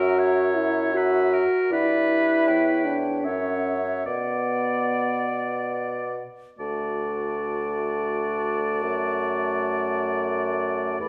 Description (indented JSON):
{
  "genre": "classical, slow romantic movement for wind quintet",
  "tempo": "70-83 BPM",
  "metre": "3/4",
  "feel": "rubato",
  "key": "B minor, D major from 6.6 s",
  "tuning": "A4 = 438 Hz",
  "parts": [
    { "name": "concert flute", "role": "melody", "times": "0.0-11.1 s", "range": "F#5 to B5", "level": "-37 LUFS", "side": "equal", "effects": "none" },
    { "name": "clear oboe", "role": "second line", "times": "0.0-11.1 s", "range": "A#4 to D5", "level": "-32 LUFS", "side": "equal", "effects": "none" },
    { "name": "mellow French horn", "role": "accompaniment", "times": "0.0-11.1 s", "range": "A3 to F#4", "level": "-28 LUFS", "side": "equal", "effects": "none" },
    { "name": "mellow clarinet", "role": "accompaniment", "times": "0.0-11.1 s", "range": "F#4 to E5", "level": "-34 LUFS", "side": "equal", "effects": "none" },
    { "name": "mellow bassoon", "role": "bass", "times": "0.0-11.1 s", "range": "D2 to B2", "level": "-30 LUFS", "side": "equal", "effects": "none" }
  ],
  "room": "wet recital hall reverb, RT60 1.6 s",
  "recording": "none",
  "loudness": "-24 LUFS",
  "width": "mono",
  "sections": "0.0-6.6 A section; 6.6-11.1 B section",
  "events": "none",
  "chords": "0.0 F#7; 1.7 G; 2.5 C#dim/E; 3.2 F#5; 4.1 Bm; 6.6 D; 8.8 D/F#",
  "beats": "0.18 0.95 | 1.72 2.48 3.25 | 4.06 4.92 5.76 | 6.59 7.35 8.08 | 8.82 9.55 10.28 | 11.00"
}